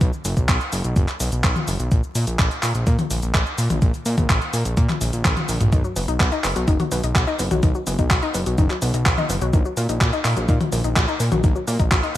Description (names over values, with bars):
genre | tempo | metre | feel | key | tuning
italo disco | 126 BPM | 4/4 | straight | unclear | A4 = 440 Hz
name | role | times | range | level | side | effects
fat analog bass | bass | 0.0-12.0 s | F#1 to Bb2 | -23 LUFS | equal | none
clean 12-bit digital drum machine | drums | 0.0-12.1 s | cabasa, handclaps, hi-hat, toms | -24 LUFS | equal | gated reverb
electronic kick drum | drums | 0.0-12.0 s | none | -19 LUFS | equal | none
analog pluck | arpeggios | 5.7-12.1 s | D#3 to F#4 | -26 LUFS | left 4 dB | chorus, cassette tape, ping-pong delay
room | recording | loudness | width
light reverb | bright 1980s-style digital production, vinyl crackle | -18 LUFS | side -14 dB against mid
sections
0.0-12.2 A section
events
drum fill 5.2-5.7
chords
0.0 B5; 1.9 N.C.; 5.7 B; 9.5 Ebm/Bb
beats
| 0.01 0.49 0.96 1.44 | 1.92 2.39 2.87 3.34 | 3.82 4.30 4.77 5.25 | 5.72 6.20 6.68 7.15 | 7.63 8.11 8.58 9.06 | 9.53 10.01 10.49 10.96 | 11.44 11.91